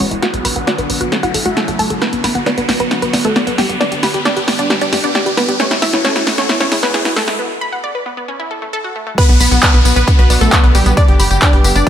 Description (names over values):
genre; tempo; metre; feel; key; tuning
uplifting trance; 134 BPM; 4/4; straight; B minor; A4 = 438 Hz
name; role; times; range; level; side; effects
wide unison pluck; melody; 0.0-11.9 s; G3 to A5; -18 LUFS; equal; sidechain pumping, tape echo
lush unison pad; sustained chords; 0.0-11.9 s; C#3 to G4; -24 LUFS; equal; chorus, sidechain pumping
wide unison pluck; arpeggios; 0.0-11.9 s; G#3 to B5; -22 LUFS; left 1 dB; sidechain pumping, dub echo
tight sequencer bass; bass; 0.0-11.8 s; D1 to G2; -18 LUFS; equal; sidechain pumping
punchy analog drum machine; drums; 0.0-11.9 s; crash cymbal, handclaps, hi-hat, snare drum, tambourine; -17 LUFS; equal; none
riser and downlifter; sound effects; 0.0-11.9 s; none; -22 LUFS; equal; none
supersaw stab; second line; 9.2-11.9 s; B3 to D5; -20 LUFS; equal; sidechain pumping, dub echo
electronic kick drum; drums; 9.2-11.9 s; none; -10 LUFS; equal; none
room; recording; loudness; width
light reverb; high-pass filter; -11 LUFS; side -9 dB against mid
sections
0.0-9.2 A section; 9.2-11.9 B section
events
build-up 0.0-9.2; drum fill 0.0-7.4; riser 0.0-7.4; filter sweep on synth pluck 0.0-9.2; filter sweep on synth arpeggio sound 0.0-9.2; break 7.4-9.2; drop 9.2-11.9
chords
0.2 Bm; 1.1 A6; 2.0 Bm; 3.8 G; 5.6 A6; 6.5 Eadd9; 7.4 Bm; 8.3 A5; 9.2 Bm; 11.0 G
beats
| 0.23 0.67 1.12 1.57 | 2.02 2.46 2.91 3.36 | 3.81 4.25 4.70 5.15 | 5.60 6.05 6.49 6.94 | 7.39 7.84 8.29 8.73 | 9.18 9.63 10.08 10.52 | 10.97 11.42 11.87